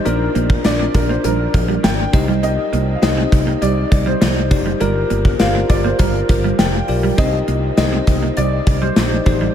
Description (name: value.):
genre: 1980s-style pop.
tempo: 101 BPM.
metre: 4/4.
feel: straight.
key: C minor.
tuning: A4 = 440 Hz.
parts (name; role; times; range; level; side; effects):
warm baby grand piano; melody; 0.0-9.5 s; Bb4 to G5; -22 LUFS; equal; analog chorus, ping-pong delay.
bell-like tine electric piano; accompaniment; 0.0-9.5 s; D4 to Eb5; -22 LUFS; left 4 dB; tube saturation.
clean electric guitar; riff; 0.1-9.5 s; F3 to C4; -24 LUFS; right 6 dB; ensemble chorus.
mellow fretless electric bass; bass; 0.1-9.5 s; F1 to C2; -20 LUFS; equal; lush chorus.
gated 80s drum kit; drums; 0.1-9.4 s; hi-hat, kick drum, snare drum; -17 LUFS; equal; none.
room: moderate huge ambient reverb, RT60 9.1 s.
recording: dreamy mix soaked in reverb.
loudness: -14 LUFS.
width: side -9 dB against mid.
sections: 0.0-9.5 A section.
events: none.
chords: 0.1 Bb; 2.1 Cm; 4.8 Gm7; 7.2 Cm.